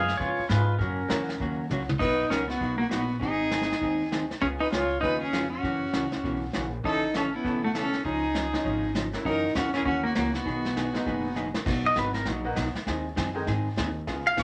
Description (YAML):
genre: country, western swing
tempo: 199 BPM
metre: 4/4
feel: swing 62% on 8ths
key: B major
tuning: A4 = 441 Hz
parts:
  - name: pedal steel guitar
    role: melody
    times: 0.0-12.3, 14.3-14.4 s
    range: A3 to E#5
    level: -30 LUFS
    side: equal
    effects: none
  - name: tack piano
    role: accompaniment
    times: 0.0-1.3, 6.8-13.5 s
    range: D#3 to A#4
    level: -38 LUFS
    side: equal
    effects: none
  - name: upright bass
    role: bass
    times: 0.0-14.4 s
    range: E1 to G#2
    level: -35 LUFS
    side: equal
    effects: none
  - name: vintage brush drum kit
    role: drums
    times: 0.1-14.4 s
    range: brushed snare drum, crash cymbal, hi-hat, kick drum, snare drum, toms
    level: -36 LUFS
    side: equal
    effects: none
  - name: vintage hollow-body jazz guitar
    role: accompaniment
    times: 0.2-14.4 s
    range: B2 to A4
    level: -36 LUFS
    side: equal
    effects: none
  - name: clear fiddle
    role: second line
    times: 2.0-11.4 s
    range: E4 to C#5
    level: -35 LUFS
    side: equal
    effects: none
room: wet small room reverb, RT60 0.5 s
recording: none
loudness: -28 LUFS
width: mono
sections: 0.0-2.0 A section; 2.0-11.7 B section; 11.7-14.4 C section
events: drum fill 1.7-2.0, 11.4-11.7; pedal steel guitar solo 11.7-14.4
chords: 0.0 C#7; 0.8 F#; 2.0 Bmaj7; 3.2 G#; 4.4 C#7; 5.6 F#7; 6.8 A; 8.0 C#add9; 9.3 F#7; 10.5 B6; 11.7 Bmaj7; 12.9 G#